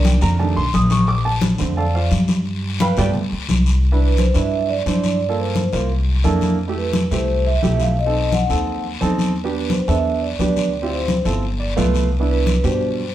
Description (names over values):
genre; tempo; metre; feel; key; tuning
Afro-Cuban jazz; 174 BPM; 4/4; straight; C major; A4 = 435 Hz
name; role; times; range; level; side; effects
warm upright piano; accompaniment; 0.0-13.0 s; B2 to Eb6; -23 LUFS; right 4 dB; none
upright bass; bass; 0.0-13.1 s; G1 to G2; -20 LUFS; equal; none
congas; percussion; 0.0-13.1 s; none; -22 LUFS; left 1 dB; none
guiro; percussion; 0.0-13.1 s; none; -31 LUFS; left 6 dB; none
vibraphone with soft mallets; melody; 4.0-13.1 s; B4 to F#5; -23 LUFS; right 1 dB; none
room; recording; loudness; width
wet studio reverb, RT60 0.7 s; heard from further back in the room; -16 LUFS; side -12 dB against mid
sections
0.0-3.8 A section; 3.8-13.1 B section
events
upright piano solo 0.0-3.8; upright piano fill 11.4-12.1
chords
0.4 F13; 1.1 Bbmaj9; 2.5 G9; 3.8 Cmaj9; 5.2 Gm7; 5.9 C13; 6.6 Fmaj9; 8.0 B7b9; 9.4 Em7; 10.7 Dm11; 11.4 G9; 12.1 Cmaj9